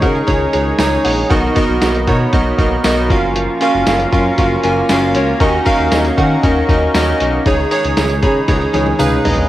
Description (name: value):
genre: 1980s-style pop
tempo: 117 BPM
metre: 4/4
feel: straight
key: Db mixolydian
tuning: A4 = 439 Hz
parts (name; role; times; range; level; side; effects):
- warm analog keys; accompaniment; 0.0-9.5 s; Cb3 to Cb6; -14 LUFS; equal; chorus, plate reverb
- chorused pulse-width pad; sustained chords; 0.0-9.5 s; Bb3 to Db6; -26 LUFS; equal; plate reverb
- direct-recorded clean electric guitar; riff; 0.0-9.5 s; Eb3 to Ab4; -23 LUFS; right 2 dB; ensemble chorus, analog delay
- smooth gliding synth bass; bass; 0.0-9.4 s; Gb1 to Eb3; -19 LUFS; equal; none
- lo-fi sampler-style drum kit; drums; 0.0-9.5 s; hi-hat, kick drum, snare drum, tambourine, toms; -18 LUFS; equal; cassette tape
- tambourine; percussion; 0.8-9.1 s; none; -34 LUFS; right 5 dB; none
room: moderate small room reverb, RT60 0.5 s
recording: home recording on cassette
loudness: -12 LUFS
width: side -14 dB against mid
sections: 0.0-9.5 A section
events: synth keys fill 0.5-1.3, 8.0-9.5; drum fill 8.5-9.5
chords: 0.0 Dbsus2; 1.3 Cbmaj7; 3.1 Gbmaj7; 5.4 Ebm7; 7.5 Dbsus2